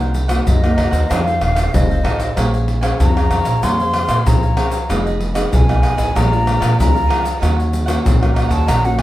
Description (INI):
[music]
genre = samba and choro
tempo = 95 BPM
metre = 4/4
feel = straight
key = Bb minor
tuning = A4 = 436 Hz
[part]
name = cavaquinho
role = accompaniment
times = 0.0-9.0 s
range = Eb4 to Ab5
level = -26 LUFS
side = right 3 dB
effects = none
[part]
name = nylon-string guitar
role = accompaniment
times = 0.0-9.0 s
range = F2 to C5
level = -24 LUFS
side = left 1 dB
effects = none
[part]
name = upright bass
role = bass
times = 0.0-9.0 s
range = Eb1 to Bb2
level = -18 LUFS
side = right 1 dB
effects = none
[part]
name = egg shaker, pandeiro, tamborim and surdo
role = percussion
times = 0.0-9.0 s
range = none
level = -17 LUFS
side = equal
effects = none
[part]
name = breathy mellow silver concert flute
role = melody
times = 0.5-9.0 s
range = Eb5 to C6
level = -21 LUFS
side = left 1 dB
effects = plate reverb
[sound]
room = wet studio reverb, RT60 0.8 s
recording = heard from further back in the room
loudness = -13 LUFS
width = side -15 dB against mid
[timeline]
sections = 0.0-9.0 A section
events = flute solo 0.0-9.0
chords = 0.0 Cm7b5; 1.1 F7; 2.4 Bbm9; 4.9 Fm7b5; 6.2 Bb7; 7.4 Ebm7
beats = 0.47 1.10 1.74 | 2.37 3.00 3.64 4.27 | 4.90 5.53 6.16 6.79 | 7.42 8.05 8.68